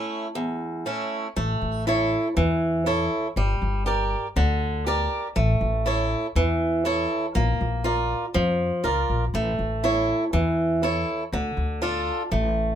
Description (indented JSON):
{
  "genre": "greek folk, Greek bouzouki band",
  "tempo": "120 BPM",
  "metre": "4/4",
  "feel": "straight",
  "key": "A phrygian dominant",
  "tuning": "A4 = 441 Hz",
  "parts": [
    { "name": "picked swing-style acoustic guitar", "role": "accompaniment", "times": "0.0-12.8 s", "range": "E2 to D5", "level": "-24 LUFS", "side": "right 1 dB", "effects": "none" },
    { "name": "upright bass", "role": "bass", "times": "1.4-12.8 s", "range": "G1 to F2", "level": "-25 LUFS", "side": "left 1 dB", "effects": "none" }
  ],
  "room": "moderate small room ambience, RT60 0.5 s",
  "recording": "minimal, uncompressed stereo recording",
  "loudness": "-22 LUFS",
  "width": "side -10 dB against mid",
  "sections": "0.0-1.4 A section; 1.4-12.8 A section",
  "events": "none",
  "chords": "0.0 A; 3.4 Gm; 5.4 A; 7.4 Bb; 9.3 A; 11.3 Dm",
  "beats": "0.36 0.86 | 1.36 1.86 2.37 2.87 | 3.37 3.86 4.36 4.86 | 5.36 5.86 6.36 6.85 | 7.35 7.85 8.35 8.84 | 9.34 9.84 10.33 10.83 | 11.32 11.82 12.31"
}